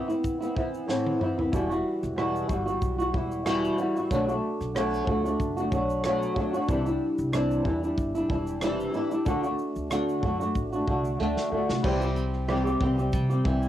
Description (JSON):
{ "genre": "acoustic pop", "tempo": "93 BPM", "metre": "4/4", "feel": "swing 55% on 16ths", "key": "unclear", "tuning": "A4 = 437 Hz", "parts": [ { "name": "flamenco guitar", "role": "accompaniment", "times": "0.0-13.7 s", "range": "E2 to G4", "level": "-26 LUFS", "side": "equal", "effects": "double-tracked left and right, cassette tape" }, { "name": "natural country drum kit", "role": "drums", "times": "0.1-13.7 s", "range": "crash cymbal, kick drum, rim click, shaker, snare drum, toms", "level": "-32 LUFS", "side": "equal", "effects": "cassette tape" }, { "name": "upright bass", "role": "bass", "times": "1.5-13.7 s", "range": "E1 to C3", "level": "-32 LUFS", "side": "equal", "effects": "transformer saturation" }, { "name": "felt-muted upright piano", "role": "accompaniment", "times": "11.8-13.7 s", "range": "E4 to G5", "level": "-37 LUFS", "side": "left 2 dB", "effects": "cassette tape" }, { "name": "picked steel-string acoustic guitar", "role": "arpeggios", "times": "11.8-13.7 s", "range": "G3 to E4", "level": "-34 LUFS", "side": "right 2 dB", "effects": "cassette tape, tape echo" } ], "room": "wet booth ambience, RT60 0.2 s", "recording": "home recording on cassette", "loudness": "-24 LUFS", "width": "side -12 dB against mid", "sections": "0.0-11.8 A section; 11.8-13.7 B section", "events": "drum fill 0.9-1.5, 11.2-11.8", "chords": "0.0 Amadd9; 1.5 Emadd9; 4.1 Bm7; 6.7 Cadd9; 9.3 D; 11.8 C" }